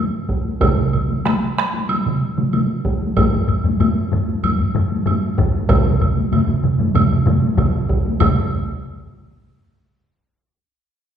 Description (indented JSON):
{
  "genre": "japanese traditional, taiko drum ensemble",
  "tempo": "95 BPM",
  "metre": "4/4",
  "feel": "straight",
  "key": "none",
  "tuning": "none",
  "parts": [
    { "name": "solo taiko drums", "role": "percussion", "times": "0.3-8.5 s", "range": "none", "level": "-20 LUFS", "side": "right 1 dB", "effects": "none" },
    { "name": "taiko ensemble", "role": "percussion", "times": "0.5-8.5 s", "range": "none", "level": "-21 LUFS", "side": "left 2 dB", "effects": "none" },
    { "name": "taiko ensemble", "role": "percussion", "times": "0.6-8.8 s", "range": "none", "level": "-20 LUFS", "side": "right 4 dB", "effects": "none" },
    { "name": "woodblock", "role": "percussion", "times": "0.6-8.5 s", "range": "none", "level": "-27 LUFS", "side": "right 4 dB", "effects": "none" },
    { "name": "taiko ensemble", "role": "percussion", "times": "3.2-8.8 s", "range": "none", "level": "-20 LUFS", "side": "left 2 dB", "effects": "none" }
  ],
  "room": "wet recital hall reverb, RT60 1.5 s",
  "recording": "heard from further back in the room",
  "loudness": "-16 LUFS",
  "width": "side -8 dB against mid",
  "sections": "0.0-8.2 A section; 8.2-10.7 B section",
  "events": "speeding up 0.0-10.7",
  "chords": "none"
}